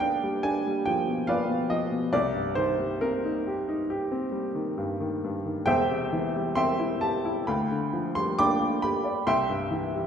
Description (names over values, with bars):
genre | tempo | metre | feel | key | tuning
classical, romantic character piece for solo piano | 67 BPM | 4/4 | rubato | C minor, C major from 5.7 s | A4 = 439 Hz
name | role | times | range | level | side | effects
warm upright piano | solo | 0.0-10.1 s | E1 to D6 | -25 LUFS | equal | none
room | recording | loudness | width
wet recital hall reverb, RT60 1.5 s | heard from further back in the room | -25 LUFS | side -8 dB against mid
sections
0.0-10.1 A section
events
none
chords
0.0 G7/B; 2.1 Cm; 5.7 C/E; 7.5 G7/D; 9.3 C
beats
0.44 1.28 | 2.12 3.00 3.88 4.77 | 5.67 6.56 7.46 8.37 | 9.26